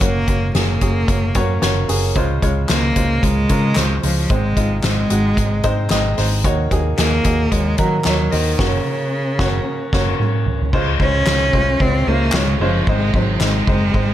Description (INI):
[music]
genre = piano-driven pop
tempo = 112 BPM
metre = 4/4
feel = swing 56% on 16ths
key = Db major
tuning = A4 = 438 Hz
[part]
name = rich cello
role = melody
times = 0.0-14.1 s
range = Db3 to Db4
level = -21 LUFS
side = equal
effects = none
[part]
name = warm upright piano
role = accompaniment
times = 0.0-14.1 s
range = Ab2 to Eb5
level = -22 LUFS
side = right 1 dB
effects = none
[part]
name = vintage muted fingered electric bass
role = bass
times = 0.0-14.1 s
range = Gb1 to Eb3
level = -20 LUFS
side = equal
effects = none
[part]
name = soft-mallet drum kit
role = drums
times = 0.0-14.1 s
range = crash cymbal, hi-hat, kick drum, ride cymbal, snare drum, toms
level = -20 LUFS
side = equal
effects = none
[part]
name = group handclap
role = percussion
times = 2.7-13.5 s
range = none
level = -28 LUFS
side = left 3 dB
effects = none
[sound]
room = small room reverb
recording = none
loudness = -15 LUFS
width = side -12 dB against mid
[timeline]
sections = 0.0-10.7 A section; 10.7-14.1 B section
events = band accent 8.6-10.7; drum fill 9.7-10.7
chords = 0.0 Gb; 2.2 Dbmaj7; 4.3 Ab; 6.4 Ebm7; 8.6 Gb; 10.7 Dbmaj7; 12.9 Ab